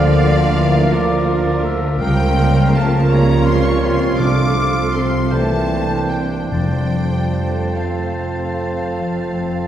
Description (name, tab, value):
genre	classical, slow romantic movement for symphony orchestra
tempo	48-56 BPM (dotted quarters)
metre	12/8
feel	rubato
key	F major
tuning	A4 = 440 Hz
part	warm symphonic violin section	melody	0.0-9.7 s	F5 to D6	-29 LUFS	left 4 dB	none
part	clear oboe	second line	0.0-9.7 s	Db5 to A5	-29 LUFS	equal	none
part	mellow hollow concert flute	second line	0.0-9.7 s	F5 to D6	-29 LUFS	left 1 dB	none
part	rich symphonic violin section	second line	0.0-9.7 s	F5 to D6	-30 LUFS	left 1 dB	none
part	warm clarinet	second line	0.0-9.7 s	A4 to C5	-28 LUFS	equal	none
part	warm bassoon	accompaniment	0.0-9.7 s	D3 to G3	-28 LUFS	right 2 dB	none
part	warm symphonic viola section	accompaniment	0.0-9.7 s	A4 to D5	-28 LUFS	right 1 dB	none
part	mellow French horn section	sustained chords	0.0-9.7 s	F3 to D4	-24 LUFS	equal	none
part	warm trombone section	sustained chords	0.0-9.7 s	E3 to Bb3	-25 LUFS	right 3 dB	none
part	concert harp	arpeggios	0.0-9.7 s	C3 to C6	-26 LUFS	left 4 dB	none
part	mellow trumpet	stabs	0.0-9.7 s	C4 to F4	-26 LUFS	right 3 dB	none
part	rich symphonic cello section	bass	0.0-9.7 s	F2 to D3	-23 LUFS	equal	none
part	warm symphonic double bass section	bass	0.0-9.7 s	F1 to D2	-20 LUFS	right 1 dB	none
part	timpani	percussion	4.2-7.7 s	F2 to C3	-25 LUFS	right 1 dB	none
room	wet concert hall reverb, RT60 2.0 s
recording	heard from further back in the room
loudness	-14 LUFS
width	side -10 dB against mid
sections	0.0-9.7 A section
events	none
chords	0.0 Bb/D; 2.0 Bbm/Db; 4.2 F/C; 5.3 C9; 6.5 F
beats	0.92 | 2.00 3.10 4.20 5.33 | 6.52 7.77 8.98